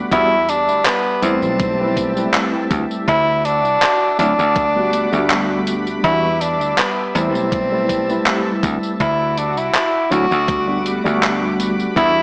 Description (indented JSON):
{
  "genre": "vaporwave",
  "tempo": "81 BPM",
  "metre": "4/4",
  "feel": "swing 54% on 16ths",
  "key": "G major",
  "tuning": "A4 = 440 Hz",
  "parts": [
    { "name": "bright tine electric piano", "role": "accompaniment", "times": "0.0-12.2 s", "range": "E3 to B4", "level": "-24 LUFS", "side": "equal", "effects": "analog chorus, analog delay" },
    { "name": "lush unison pad", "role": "sustained chords", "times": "0.0-12.2 s", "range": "G3 to D6", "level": "-29 LUFS", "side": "equal", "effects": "chorus" },
    { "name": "dry thumbed slap bass", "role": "bass", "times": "0.0-12.2 s", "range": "B1 to E2", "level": "-26 LUFS", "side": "equal", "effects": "none" },
    { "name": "clear tenor saxophone", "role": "melody", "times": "0.1-12.2 s", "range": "B3 to F#4", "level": "-20 LUFS", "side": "equal", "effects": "analog delay" },
    { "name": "electronic kick drum", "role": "drums", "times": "0.1-12.1 s", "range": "none", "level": "-27 LUFS", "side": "equal", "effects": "vintage 12-bit sampler grit, studio reverb" },
    { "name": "gated 80s digital drum machine", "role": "drums", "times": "0.1-12.1 s", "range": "handclaps, hi-hat, tambourine", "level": "-23 LUFS", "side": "equal", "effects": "gated reverb, vintage 12-bit sampler grit, studio reverb" }
  ],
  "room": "moderate scoring stage reverb, RT60 2.1 s",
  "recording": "small speaker sound",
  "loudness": "-17 LUFS",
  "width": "mono",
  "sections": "0.0-12.2 A section",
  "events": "none",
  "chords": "0.1 Em7; 1.2 Am7; 3.1 D9; 4.6 Gmaj7/D; 6.0 Em7; 7.2 Am7; 9.0 D9; 10.5 Gmaj7/D",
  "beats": "| 0.11 0.85 1.59 2.33 | 3.08 3.82 4.56 5.30 | 6.04 6.78 7.52 8.26 | 9.00 9.74 10.48 11.22 | 11.96"
}